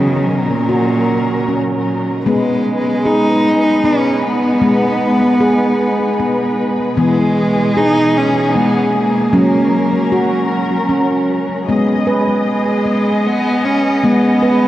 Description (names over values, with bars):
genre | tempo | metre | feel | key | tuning
world meditative, meditative tuned percussion | 76 BPM | 3/4 | straight | G# minor | A4 = 440 Hz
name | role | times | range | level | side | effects
warm cello | melody | 0.0-14.7 s | A#2 to D#4 | -16 LUFS | right 1 dB | shimmer reverb, diffuse ambient delay
muted studio string section | sustained chords | 0.0-14.7 s | B2 to D#5 | -21 LUFS | left 1 dB | shimmer reverb
handpan | arpeggios | 0.0-14.7 s | E3 to B4 | -15 LUFS | equal | shimmer reverb, diffuse ambient delay
room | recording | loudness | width
wet cathedral reverb, RT60 4.5 s | worn, warbling old tape, cassette tape, warbly pitch drift | -12 LUFS | side -14 dB against mid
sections
0.0-2.3 A section; 2.3-11.7 B section; 11.7-14.7 C section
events
none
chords
0.0 F#; 2.3 G#m; 7.0 E; 9.3 F#; 11.7 G#m